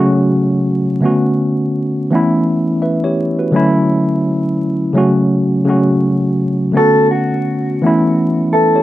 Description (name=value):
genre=hip hop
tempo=84 BPM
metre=4/4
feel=swing 56% on 16ths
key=B minor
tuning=A4 = 440 Hz
part: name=mellow tine electric piano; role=accompaniment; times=0.0-8.8 s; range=C#3 to E5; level=-12 LUFS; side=equal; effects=medium stereo tremolo, cassette tape, high-pass filter, low-pass filter
part: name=mellow electric guitar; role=melody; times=6.8-8.8 s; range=F#4 to A4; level=-14 LUFS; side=equal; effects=high-pass filter, low-pass filter
room=light reverb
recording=vinyl crackle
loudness=-12 LUFS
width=side -14 dB against mid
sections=0.0-8.8 A section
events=none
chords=0.0 F#m; 1.0 Bm7; 2.1 Aadd9; 3.5 Dmaj7; 5.0 F#m; 6.8 Bm7; 7.8 Aadd9